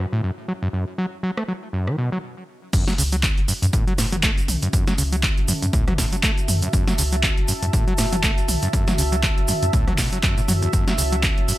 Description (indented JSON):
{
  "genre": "acid house",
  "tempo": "120 BPM",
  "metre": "4/4",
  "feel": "swing 57% on 16ths",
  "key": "F# minor",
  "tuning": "A4 = 440 Hz",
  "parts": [
    { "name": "overdriven acid bass", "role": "riff", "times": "0.0-11.5 s", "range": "E2 to A3", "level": "-25 LUFS", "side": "equal", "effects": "distortion, sidechain pumping, digital delay" },
    { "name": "deep dark ambient pad", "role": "texture", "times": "0.0-11.6 s", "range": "C#4 to A5", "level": "-30 LUFS", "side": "right 1 dB", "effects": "chorus, built-in reverb, sidechain pumping" },
    { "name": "punchy analog drum machine", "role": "drums", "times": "1.4-11.6 s", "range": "crash cymbal, handclaps, hi-hat, rim click, snare drum, toms", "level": "-24 LUFS", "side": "equal", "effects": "overdrive" },
    { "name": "warm sub bass", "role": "bass", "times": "2.7-11.4 s", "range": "E1 to F#2", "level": "-24 LUFS", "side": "equal", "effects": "sidechain pumping" },
    { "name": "electronic kick drum", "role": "drums", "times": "2.7-11.3 s", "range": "none", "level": "-21 LUFS", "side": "equal", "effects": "overdrive" },
    { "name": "tube shaker", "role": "percussion", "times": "2.7-11.6 s", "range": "none", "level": "-30 LUFS", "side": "right 3 dB", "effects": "none" }
  ],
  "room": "digital ambience",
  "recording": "none",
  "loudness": "-18 LUFS",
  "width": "side -16 dB against mid",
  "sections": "0.0-2.7 A section; 2.7-11.6 B section",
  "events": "stop 2.2-2.7; drop 2.7-11.6",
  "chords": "0.0 F#m7"
}